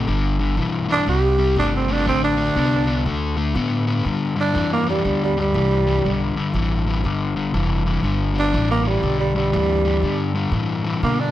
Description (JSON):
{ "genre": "electric blues shuffle", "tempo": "120 BPM", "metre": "4/4", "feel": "swing 63% on 8ths", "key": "G mixolydian", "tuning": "A4 = 440 Hz", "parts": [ { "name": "overdriven semi-hollow guitar", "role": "riff", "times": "0.0-11.3 s", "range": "G2 to B3", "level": "-22 LUFS", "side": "left 4 dB", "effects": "none" }, { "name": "upright bass", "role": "bass", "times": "0.0-11.3 s", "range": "F1 to B2", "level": "-23 LUFS", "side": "right 1 dB", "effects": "none" }, { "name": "growling tenor saxophone", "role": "melody", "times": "0.9-11.3 s", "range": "G3 to G4", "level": "-20 LUFS", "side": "right 2 dB", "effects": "plate reverb" } ], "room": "moderate club reverb, RT60 0.8 s", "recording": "none", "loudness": "-18 LUFS", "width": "side -13 dB against mid", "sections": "0.0-4.1 A section; 4.1-11.3 B section", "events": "tenor saxophone solo 4.1-11.3", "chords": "0.1 G; 1.1 C5; 2.1 D5; 4.1 G7", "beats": "| 0.08 0.57 1.07 1.57 | 2.07 2.56 3.06 3.56 | 4.06 4.56 5.06 5.55 | 6.05 6.55 7.05 7.55 | 8.05 8.54 9.04 9.54 | 10.04 10.54 11.04" }